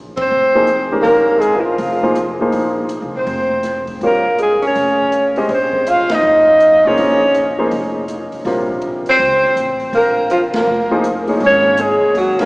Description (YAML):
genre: modal jazz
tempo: 162 BPM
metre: 4/4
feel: swing 64% on 8ths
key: Bb dorian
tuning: A4 = 444 Hz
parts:
  - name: upright bass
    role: bass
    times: 0.0-12.5 s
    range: F1 to F2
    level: -28 LUFS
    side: equal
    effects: none
  - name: breathy alto saxophone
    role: melody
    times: 0.2-12.5 s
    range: E4 to F5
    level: -15 LUFS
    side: equal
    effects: none
  - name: breathy tenor saxophone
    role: second line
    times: 0.2-12.5 s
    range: E3 to F4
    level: -18 LUFS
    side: equal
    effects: none
  - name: open jazz drum kit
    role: drums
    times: 0.2-12.5 s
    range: hi-hat, kick drum, ride cymbal, snare drum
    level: -31 LUFS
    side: equal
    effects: none
  - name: warm baby grand piano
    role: accompaniment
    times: 0.6-12.5 s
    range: C3 to Eb5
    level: -20 LUFS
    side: equal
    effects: none
room: wet cathedral reverb, RT60 4.7 s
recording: recorded in a church or concert hall, small speaker sound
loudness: -12 LUFS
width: side -26 dB against mid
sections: 0.0-11.4 A section; 11.4-12.5 B section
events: band accent 0.1, 6.1, 10.5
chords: 0.0 Bbm11; 11.4 G#7sus4